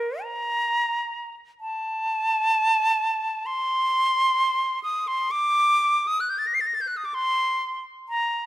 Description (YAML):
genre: classical, free, expressive piece for unaccompanied flute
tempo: 57-68 BPM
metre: 4/4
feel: rubato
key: unclear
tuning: A4 = 441 Hz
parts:
  - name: bright concert flute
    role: solo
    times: 0.0-8.5 s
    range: Bb4 to C7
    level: -22 LUFS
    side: equal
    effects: none
room: moderate scoring stage reverb, RT60 1.8 s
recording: close, detailed microphones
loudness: -21 LUFS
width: side -15 dB against mid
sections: 0.0-8.5 A section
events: none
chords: none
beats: 0.70 | 1.60 2.51 3.47 4.39 | 5.32 6.24 7.14 8.10